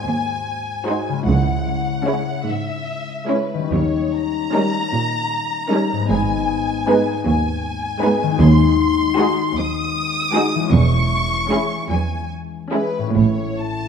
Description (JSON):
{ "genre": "classical, slow romantic movement for symphony orchestra", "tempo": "45-53 BPM (dotted quarters)", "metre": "6/8", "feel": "rubato", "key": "G# minor, C# minor from 8.4 s", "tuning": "A4 = 441 Hz", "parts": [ { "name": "rich symphonic violin section", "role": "melody", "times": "0.0-13.9 s", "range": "B4 to D#6", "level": "-24 LUFS", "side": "left 2 dB", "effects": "none" }, { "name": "concert harp", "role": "arpeggios", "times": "0.0-13.9 s", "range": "G#2 to G#4", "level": "-23 LUFS", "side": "left 10 dB", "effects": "none" }, { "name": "rich symphonic cello section", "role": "bass", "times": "0.1-13.9 s", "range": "C#2 to A#2", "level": "-20 LUFS", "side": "right 3 dB", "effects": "none" }, { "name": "rich symphonic violin section", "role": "second line", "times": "0.9-13.0 s", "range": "D#4 to C#5", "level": "-24 LUFS", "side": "left 2 dB", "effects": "none" }, { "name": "rich symphonic viola section", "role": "accompaniment", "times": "0.9-13.0 s", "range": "G3 to D#4", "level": "-22 LUFS", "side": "right 2 dB", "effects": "none" }, { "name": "rich studio double bass section", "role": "bass", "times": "1.3-13.9 s", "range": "E1 to D#2", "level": "-21 LUFS", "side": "right 3 dB", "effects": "none" }, { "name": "timpani", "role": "percussion", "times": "1.3-2.4 s", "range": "C#3", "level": "-25 LUFS", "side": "right 4 dB", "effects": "none" } ], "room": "moderate scoring stage reverb, RT60 1.6 s", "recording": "dark, warm production", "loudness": "-17 LUFS", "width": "side -7 dB against mid", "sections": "0.0-13.9 A section", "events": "none", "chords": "0.0 G#7; 1.3 C#m; 3.7 D#7; 6.1 G#m; 8.4 G#7/D#; 10.7 C#m/E; 13.2 A", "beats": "0.06 | 1.26 2.47 | 3.72 4.93 | 6.11 7.27 | 8.41 9.57 | 10.73 11.90 | 13.16" }